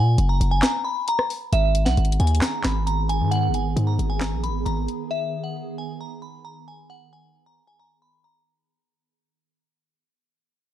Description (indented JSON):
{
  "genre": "hip hop, trap",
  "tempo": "134 BPM",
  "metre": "4/4",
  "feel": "half-time",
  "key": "G# minor",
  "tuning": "A4 = 440 Hz",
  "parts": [
    { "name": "glassy synth bell", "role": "melody", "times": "0.0-8.4 s", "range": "E5 to B5", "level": "-27 LUFS", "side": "right 1 dB", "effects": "chorus, phaser" },
    { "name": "distorted 808-style bass", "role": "bass", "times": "0.0-4.9 s", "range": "F#1 to A#2", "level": "-20 LUFS", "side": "equal", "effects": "distortion" },
    { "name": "trap drum kit", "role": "drums", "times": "0.2-5.0 s", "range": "handclaps, hi-hat, rim click, snare drum", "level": "-25 LUFS", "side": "equal", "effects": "none" },
    { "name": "ethereal airy pad", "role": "sustained chords", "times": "2.1-8.6 s", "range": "D#3 to G#4", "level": "-31 LUFS", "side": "right 2 dB", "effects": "ensemble chorus, built-in reverb" }
  ],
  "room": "digital ambience",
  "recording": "dark, warm production",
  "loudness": "-20 LUFS",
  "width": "side -12 dB against mid",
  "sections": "0.0-1.5 A section; 1.5-8.7 B section",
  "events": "break 0.6-1.5; fade-out 1.5-8.7",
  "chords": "0.0 F#add9; 1.5 G#m",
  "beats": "0.18 0.63 1.08 | 1.52 1.97 2.42 2.87 | 3.32 3.76 4.21 4.66 | 5.11 5.55 6.00 6.45 | 6.90 7.35 7.79 8.24"
}